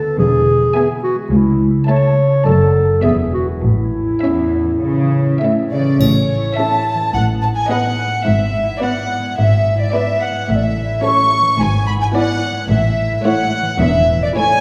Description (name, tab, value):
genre	cinematic, playful, whimsical film cue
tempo	107 BPM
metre	4/4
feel	straight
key	A major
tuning	A4 = 440 Hz
part	rich studio violin section	melody	0.0-14.6 s	C#5 to A5	-28 LUFS	equal	none
part	mellow clarinet	second line	0.0-5.7 s	E4 to C#5	-19 LUFS	equal	none
part	warm studio violin section	second line	0.0-14.6 s	C#5 to C#6	-24 LUFS	equal	none
part	dark studio viola section	accompaniment	0.0-14.6 s	A3 to B4	-25 LUFS	equal	none
part	concert harp	arpeggios	0.0-14.6 s	E2 to D5	-23 LUFS	equal	none
part	rich studio cello section	bass	0.2-14.2 s	C#2 to C#3	-22 LUFS	equal	none
part	rich studio double bass section	bass	0.2-14.2 s	E1 to C#2	-22 LUFS	equal	none
part	mellow hollow baroque flute	second line	5.7-14.6 s	C#5 to C#6	-22 LUFS	equal	none
part	triangle	percussion	6.0-7.1 s	none	-31 LUFS	equal	none
room	wet scoring stage reverb, RT60 1.7 s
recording	heard from further back in the room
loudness	-16 LUFS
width	mono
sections	0.0-6.0 A section; 6.0-14.6 A section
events	none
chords	0.2 E; 1.3 A/C#; 2.5 D/F#; 3.0 E; 3.6 A; 7.1 B7/A; 8.3 E7/G#; 10.5 A; 11.6 E7/G#; 12.7 A